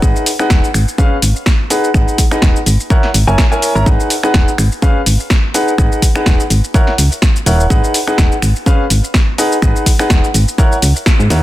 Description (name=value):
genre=piano house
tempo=125 BPM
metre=4/4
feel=swing 55% on 16ths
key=G# minor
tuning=A4 = 443 Hz
part: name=clear upright piano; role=riff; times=0.0-11.4 s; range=C#4 to A#5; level=-16 LUFS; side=equal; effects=sidechain pumping, low-pass filter, digital delay
part: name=solid FM bass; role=bass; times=0.0-11.4 s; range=D#1 to G#2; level=-13 LUFS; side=equal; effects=tube saturation, sidechain pumping
part: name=electronic kick drum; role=drums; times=0.0-11.2 s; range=none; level=-12 LUFS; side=equal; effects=none
part: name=punchy analog drum machine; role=drums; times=0.0-11.4 s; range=finger snaps, hi-hat, shaker, snare drum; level=-18 LUFS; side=equal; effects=soft clipping on snare
room=little or no reverb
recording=dense, heavily limited modern master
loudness=-10 LUFS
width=side -15 dB against mid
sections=0.0-11.4 A section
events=band accent 11.1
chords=0.0 G#m7; 1.0 C#7; 1.7 G#m7; 2.7 F#7/G#; 3.9 G#m7; 4.8 C#7; 5.5 G#m7; 6.5 F#7/G#; 7.7 G#m7; 8.7 C#7; 9.4 G#m7; 10.3 F#7/G#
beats=| 0.02 0.50 0.98 1.46 | 1.94 2.42 2.90 3.38 | 3.86 4.34 4.82 5.30 | 5.78 6.26 6.74 7.22 | 7.70 8.18 8.66 9.14 | 9.62 10.10 10.58 11.06